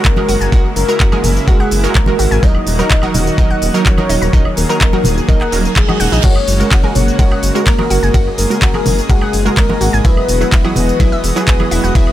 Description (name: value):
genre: progressive house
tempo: 126 BPM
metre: 4/4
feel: straight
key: F# mixolydian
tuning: A4 = 442 Hz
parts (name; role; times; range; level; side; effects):
- soft octave-layered synth lead; melody; 0.0-12.1 s; G#4 to D#5; -19 LUFS; left 1 dB; chorus, phaser, sidechain pumping, tape echo
- lush unison pad; sustained chords; 0.0-12.1 s; C#3 to G#4; -22 LUFS; equal; chorus, sidechain pumping
- wide unison pluck; stabs; 0.0-12.1 s; F#3 to D#5; -20 LUFS; right 3 dB; sidechain pumping
- dark detuned saw bass; bass; 0.0-12.1 s; D#1 to A#1; -18 LUFS; equal; sidechain pumping
- electronic kick drum; drums; 0.0-12.1 s; none; -12 LUFS; equal; none
- pop drum kit; drums; 0.0-12.1 s; crash cymbal, handclaps, hi-hat, ride cymbal, tambourine; -21 LUFS; equal; sidechain pumping on perc, sidechain pumping on hats, sidechain pumping on cymbals
- congas and woodblock; percussion; 0.2-12.1 s; none; -22 LUFS; right 1 dB; sidechain pumping on perc
- analog pluck; arpeggios; 0.3-12.0 s; D#4 to A#5; -23 LUFS; equal; chorus, cassette tape, sidechain pumping, ping-pong delay
- reverse cymbal; sound effects; 5.5-6.2 s; none; -25 LUFS; right 6 dB; none
- drifting glass-harmonics texture; texture; 7.1-12.1 s; D#5 to D#6; -31 LUFS; left 1 dB; chorus, built-in reverb, sidechain pumping
room: little or no reverb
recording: none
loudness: -10 LUFS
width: side -13 dB against mid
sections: 0.0-12.1 A section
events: reverse cymbal 5.5-6.2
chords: 0.0 F#add9; 2.4 D#m; 6.2 F#add9; 10.0 Eadd9